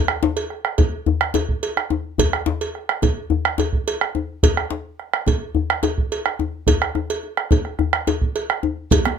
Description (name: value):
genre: west african traditional, West African drum ensemble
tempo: 107 BPM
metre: 4/4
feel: straight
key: none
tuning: none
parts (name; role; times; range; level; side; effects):
- bombo; percussion; 0.1-9.2 s; none; -20 LUFS; right 4 dB; none
- djembe; percussion; 0.2-9.0 s; none; -22 LUFS; left 7 dB; none
- cowbell; percussion; 0.4-9.1 s; none; -25 LUFS; right 4 dB; none
- congas; percussion; 8.9-9.2 s; none; -24 LUFS; right 9 dB; none
- djembe; percussion; 8.9-9.2 s; none; -23 LUFS; right 2 dB; none
- shekere; percussion; 8.9-9.0 s; none; -30 LUFS; left 5 dB; none
room: moderate studio reverb, RT60 0.5 s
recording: none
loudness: -19 LUFS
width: side -7 dB against mid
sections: 0.0-8.9 A section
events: none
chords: none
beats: 0.50 1.06 1.62 | 2.19 2.75 3.31 3.87 | 4.43 4.99 5.55 6.11 | 6.67 7.23 7.79 8.35 | 8.91